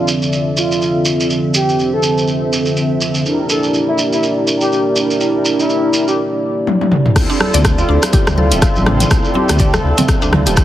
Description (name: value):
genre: afro house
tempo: 123 BPM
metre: 4/4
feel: swing 58% on 16ths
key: D minor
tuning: A4 = 435 Hz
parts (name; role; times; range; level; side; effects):
- expressive synth lead; melody; 0.0-10.1 s; E4 to A4; -20 LUFS; equal; wide subtle chorus, digital delay
- dark analog pad; sustained chords; 0.0-10.6 s; F3 to C6; -20 LUFS; left 1 dB; chorus, sidechain pumping
- mellow synth brass; stabs; 0.0-10.6 s; D3 to E5; -19 LUFS; right 2 dB; chorus, phaser, sidechain pumping, digital delay
- shekere; percussion; 0.1-10.6 s; none; -21 LUFS; right 2 dB; none
- deep house drum kit; drums; 6.7-10.6 s; crash cymbal, hi-hat, rim click, toms; -16 LUFS; left 1 dB; low-pass filter on toms, low-pass filter on snare, low-pass filter on hats, low-pass filter on cymbals, low-pass filter on room
- dark detuned saw bass; bass; 7.2-10.6 s; D1 to D2; -16 LUFS; left 1 dB; sidechain pumping
- electronic kick drum; drums; 7.2-10.6 s; none; -15 LUFS; left 1 dB; none
- mallet-like synth pluck; arpeggios; 7.3-10.6 s; A3 to D5; -22 LUFS; equal; chorus, sidechain pumping, digital delay
- congas; percussion; 7.4-10.6 s; none; -22 LUFS; right 1 dB; none
room: light reverb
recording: heavily compressed radio sound, multiband compression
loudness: -12 LUFS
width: side -12 dB against mid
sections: 0.0-7.2 A section; 7.2-10.6 B section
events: filter sweep on analog polysynth 0.0-7.2; drum fill 6.7-7.2; drop 7.2-10.6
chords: 0.0 Dm7; 3.3 Em7b5; 7.2 Dm7